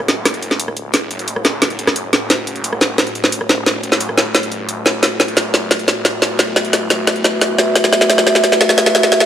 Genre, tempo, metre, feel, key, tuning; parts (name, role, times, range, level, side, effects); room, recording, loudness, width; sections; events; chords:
dark technical drum and bass; 176 BPM; 4/4; straight; F# minor; A4 = 440 Hz
dark analog pad; sustained chords; 0.0-9.3 s; A3 to F#5; -20 LUFS; equal; wide subtle chorus
snarling distorted saw bass; bass; 0.0-9.3 s; E1 to G1; -26 LUFS; equal; distortion, tube saturation, high-pass filter
drum and bass drum kit; drums; 0.0-9.3 s; hi-hat, rim click, snare drum; -14 LUFS; equal; overdrive, small room ambience
light reverb, digital ambience; high-pass filter; -13 LUFS; side -10 dB against mid
0.0-9.3 A section
build-up 0.0-9.3; drum fill 0.0-9.3
0.0 F#m